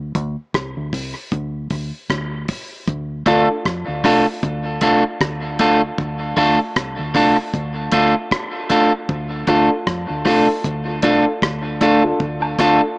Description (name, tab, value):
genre	dub reggae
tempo	77 BPM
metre	4/4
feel	swing 56% on 16ths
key	D minor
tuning	A4 = 444 Hz
part	deep dub fingered electric bass	bass	0.0-12.8 s	C2 to F2	-25 LUFS	equal	none
part	damped 70s drum kit	drums	0.1-12.8 s	hi-hat, kick drum, rim click	-22 LUFS	equal	none
part	electric guitar at the edge of break-up	accompaniment	3.3-12.8 s	A3 to A4	-16 LUFS	equal	dub echo
part	dark grand piano	stabs	3.3-3.5, 9.5-12.8 s	D4 to A4	-20 LUFS	left 1 dB	dub echo
part	woodblock and tambourine	percussion	12.4-12.8 s	none	-26 LUFS	equal	dub echo
room	moderate spring reverb, RT60 2.2 s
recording	echo-heavy mix, small speaker sound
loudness	-16 LUFS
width	side -27 dB against mid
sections	0.0-13.0 A section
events	break 0.0-2.9; part muted 2.9-12.2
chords	0.0 Csus2; 2.9 Dm